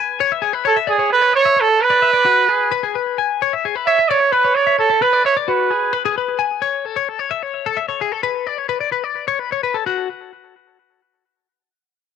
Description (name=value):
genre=rock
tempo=261 BPM (eighths)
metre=7/8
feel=straight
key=unclear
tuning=A4 = 440 Hz
part: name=twelve-string electric guitar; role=arpeggios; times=0.0-10.1 s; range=F#4 to G#5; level=-19 LUFS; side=left 11 dB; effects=cassette tape, tape echo
part: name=warm trumpet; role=melody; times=0.7-6.0 s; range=G#4 to E5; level=-14 LUFS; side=right 5 dB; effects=cassette tape
room=light reverb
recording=home recording on cassette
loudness=-15 LUFS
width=side -7 dB against mid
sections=0.0-6.6 A section; 6.6-9.9 B section; 9.9-11.5 C section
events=none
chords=0.2 Amaj7; 1.8 G#m7b5; 3.4 C#m7; 6.6 A; 8.2 Aadd9; 9.9 N.C.